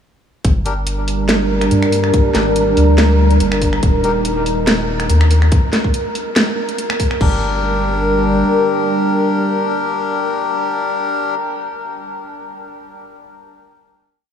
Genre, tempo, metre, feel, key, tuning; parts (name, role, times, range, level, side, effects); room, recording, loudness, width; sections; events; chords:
deep dubstep; 142 BPM; 4/4; swing 54% on 16ths, half-time; G minor; A4 = 440 Hz
dark analog pad; sustained chords; 0.9-11.3 s; G3 to Bb4; -19 LUFS; equal; chorus
soft dub sub bass; bass; 0.4-8.4 s; Eb1 to G2; -16 LUFS; equal
electronic kick drum; drums; 0.4-7.3 s; -15 LUFS; left 1 dB
garage drum kit; drums; 0.4-7.3 s; crash cymbal, finger snaps, hi-hat, snare drum; -20 LUFS; equal
wind-like tuned noise texture; texture; 0.8-7.2 s; Bb4; -24 LUFS; right 3 dB; built-in reverb
melodica; stabs; 0.7-4.1, 7.2-11.3 s; D4 to Bb4; -22 LUFS; left 3 dB; dub echo
moderate huge ambient reverb, RT60 8.4 s; dreamy mix soaked in reverb, small room reverb; -13 LUFS; side -8 dB against mid
0.4-7.2 drop; 7.2-10.6 final chord
drop 0.4-7.2
0.4 Gm; 3.8 Eb; 7.2 Gm